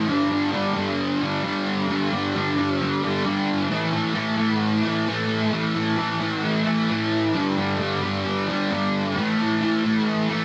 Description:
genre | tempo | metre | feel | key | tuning
rock | 132 BPM | 4/4 | straight | unclear | A4 = 440 Hz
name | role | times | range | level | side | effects
fuzz guitar | solo | 0.0-10.4 s | G2 to A3 | -23 LUFS | equal | distortion, analog chorus
room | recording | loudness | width
light reverb | dense, heavily limited modern master | -23 LUFS | mono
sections
0.0-10.4 A section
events
none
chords
0.1 G5; 3.7 A5; 7.3 G5; 9.1 A5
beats
| 0.07 0.52 0.98 1.43 | 1.89 2.34 2.79 3.25 | 3.70 4.15 4.61 5.06 | 5.51 5.97 6.42 6.88 | 7.33 7.78 8.24 8.69 | 9.15 9.60 10.06

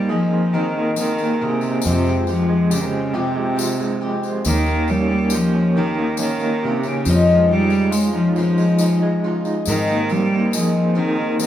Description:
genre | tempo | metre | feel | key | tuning
acoustic folk duo or small band | 46 BPM (dotted quarters) | 6/8 | straight | unclear | A4 = 440 Hz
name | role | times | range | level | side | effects
clear cello | second line | 0.0-11.5 s | C3 to Ab3 | -19 LUFS | equal | none
picked twelve-string acoustic guitar | accompaniment | 0.0-11.5 s | F2 to Bb4 | -25 LUFS | left 4 dB | none
electric guitar through a small old amp | arpeggios | 0.0-11.5 s | Eb3 to Ab4 | -22 LUFS | right 1 dB | tremolo
fingered electric bass | bass | 0.0-11.5 s | Eb2 to Ab2 | -23 LUFS | equal | none
tambourine | percussion | 1.0-11.5 s | none | -31 LUFS | left 6 dB | none
room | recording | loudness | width
wet large studio reverb, RT60 0.9 s | band playing live in one room | -16 LUFS | side -11 dB against mid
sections
0.0-11.5 A section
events
cello solo 0.0-11.5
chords
0.0 Abadd9; 1.8 Fmadd9; 4.5 Eb7; 7.1 Dbadd9/F; 9.7 Abadd9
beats
0.54 | 1.85 3.15 | 4.45 5.76 | 7.06 8.36 | 9.66 10.97

